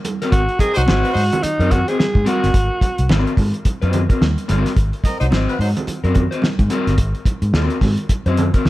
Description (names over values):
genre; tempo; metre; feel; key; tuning
funk; 108 BPM; 4/4; swing 60% on 16ths; Ab mixolydian; A4 = 436 Hz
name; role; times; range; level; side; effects
cloth-damped thuddy drum kit; drums; 0.0-8.7 s; hi-hat, kick drum, snare drum; -18 LUFS; equal; none
congas; percussion; 0.0-8.7 s; none; -26 LUFS; right 4 dB; none
electric guitar at the edge of break-up; accompaniment; 0.2-8.7 s; C4 to C5; -23 LUFS; left 3 dB; spring reverb
growling alto saxophone; melody; 0.3-3.1 s; Eb4 to Ab4; -20 LUFS; right 1 dB; none
vintage muted fingered electric bass; bass; 0.3-8.7 s; G1 to Ab2; -18 LUFS; equal; none
warm horn section; second line; 0.6-1.2, 5.0-5.7 s; Gb3 to Eb5; -25 LUFS; equal; none
room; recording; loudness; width
small room ambience; none; -15 LUFS; side -17 dB against mid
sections
0.0-8.7 A section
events
none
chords
0.0 Ab9